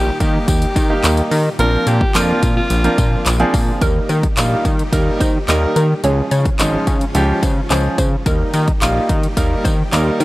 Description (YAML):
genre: dance-pop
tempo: 108 BPM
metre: 4/4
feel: straight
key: Eb major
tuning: A4 = 439 Hz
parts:
  - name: bright alto saxophone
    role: melody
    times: 0.0-3.5 s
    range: F4 to Bb4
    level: -22 LUFS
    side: left 1 dB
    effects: tape echo
  - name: supersaw chords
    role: sustained chords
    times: 0.0-10.2 s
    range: Ab2 to G4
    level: -28 LUFS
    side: equal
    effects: sidechain pumping
  - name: fat analog bass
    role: bass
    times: 0.0-10.2 s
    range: Ab1 to Eb3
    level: -17 LUFS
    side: equal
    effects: sidechain pumping
  - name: clear grand piano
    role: accompaniment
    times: 0.2-10.2 s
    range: F3 to Bb4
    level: -20 LUFS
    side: right 1 dB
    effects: sidechain pumping
  - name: pop drum kit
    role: drums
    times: 0.2-10.2 s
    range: handclaps, hi-hat, kick drum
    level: -18 LUFS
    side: equal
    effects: none
  - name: tambourine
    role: percussion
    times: 0.2-10.2 s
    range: none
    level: -31 LUFS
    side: left 4 dB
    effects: none
  - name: hollow square pluck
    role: melody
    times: 3.8-10.2 s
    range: Bb4 to Db5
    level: -24 LUFS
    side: equal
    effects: chorus, tape echo
room: small room ambience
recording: dry, gritty hardware recording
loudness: -13 LUFS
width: side -18 dB against mid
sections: 0.0-3.8 A section; 3.8-10.2 B section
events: none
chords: 0.0 Eb; 1.6 Bbadd9; 3.8 Eb; 6.0 Db; 8.3 Eb